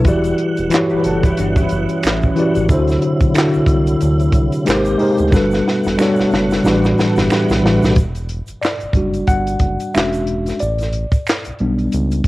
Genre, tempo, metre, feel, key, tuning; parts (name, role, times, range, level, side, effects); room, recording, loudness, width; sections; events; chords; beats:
R&B, neo-soul; 91 BPM; 4/4; swing 57% on 16ths; A4 = 444 Hz
mellow tine electric piano; accompaniment; 0.0-12.3 s; A2 to F#5; -16 LUFS; left 1 dB; medium stereo tremolo, cassette tape
tonewheel organ; sustained chords; 0.0-8.0 s; B2 to F#5; -25 LUFS; right 1 dB; slow rotary speaker, overdrive, chorus vibrato, cassette tape
round analog bass; bass; 0.0-12.3 s; E1 to D2; -21 LUFS; equal; tube saturation
compact cocktail drum kit; drums; 0.0-12.3 s; handclaps, hi-hat, kick drum, snare drum; -18 LUFS; equal; cassette tape
egg shaker and finger snaps; percussion; 0.1-12.2 s; -31 LUFS; right 3 dB
electric guitar through a small old amp; second line; 0.9-2.5, 6.6-7.9 s; C#4 to B4; -25 LUFS; right 4 dB; analog chorus, cassette tape
light reverb, small room ambience; home recording on cassette; -14 LUFS; side -18 dB against mid
0.0-8.0 A section; 8.0-12.3 B section
drum fill 5.3-8.0; tine electric piano solo 8.0-12.3
0.1 Em9; 2.7 D9; 4.7 G#maj9; 5.3 Gmaj9; 6.6 A13sus4; 8.0 Em9; 9.9 E13; 10.6 A9sus4
| 0.05 0.71 1.37 2.03 | 2.69 3.35 4.01 4.67 | 5.33 5.99 6.64 7.30 | 7.96 8.62 9.28 9.94 | 10.60 11.26 11.92